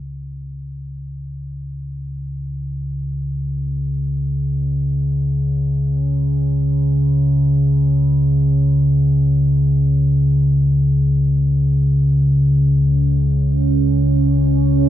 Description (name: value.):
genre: dark ambient drone.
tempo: free time.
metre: none.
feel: none.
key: unclear.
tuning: A4 = 441 Hz.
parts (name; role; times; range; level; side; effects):
deep rumbling drone; drone; 0.0-14.9 s; C#2 to C#3; -15 LUFS; equal; built-in reverb.
deep dark ambient pad; sustained chords; 13.0-14.9 s; C#4 to E4; -21 LUFS; right 8 dB; chorus, built-in reverb.
room: little or no reverb.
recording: none.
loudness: -14 LUFS.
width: side -12 dB against mid.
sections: 0.0-14.9 A section.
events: none.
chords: none.